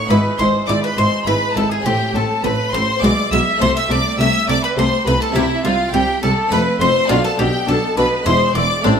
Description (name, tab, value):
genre	classical, baroque-style concerto movement with solo episodes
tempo	103 BPM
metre	3/4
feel	straight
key	A minor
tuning	A4 = 440 Hz
part	bowl-back mandolin	melody	0.0-9.0 s	D4 to E5	-21 LUFS	equal	none
part	rich chamber violin section	melody	0.0-8.9 s	D5 to E6	-22 LUFS	left 1 dB	none
part	harpsichord	accompaniment	0.0-9.0 s	E2 to A4	-26 LUFS	equal	none
part	warm studio violin section	second line	0.1-9.0 s	D4 to E5	-22 LUFS	equal	none
part	warm studio viola section	accompaniment	0.1-8.9 s	G3 to E4	-23 LUFS	left 1 dB	none
part	warm chamber cello section	bass	0.1-8.9 s	E2 to C3	-22 LUFS	equal	none
part	warm chamber double bass section	bass	0.1-8.9 s	E1 to C2	-22 LUFS	right 1 dB	none
room	wet stone room reverb, RT60 1.2 s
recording	none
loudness	-14 LUFS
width	side -7 dB against mid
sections	0.0-9.0 A section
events	none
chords	0.1 E/G#; 1.9 Am; 3.0 E7/B; 3.6 Am/C; 5.4 C; 6.5 Fmaj7; 7.1 Bdim; 8.3 E7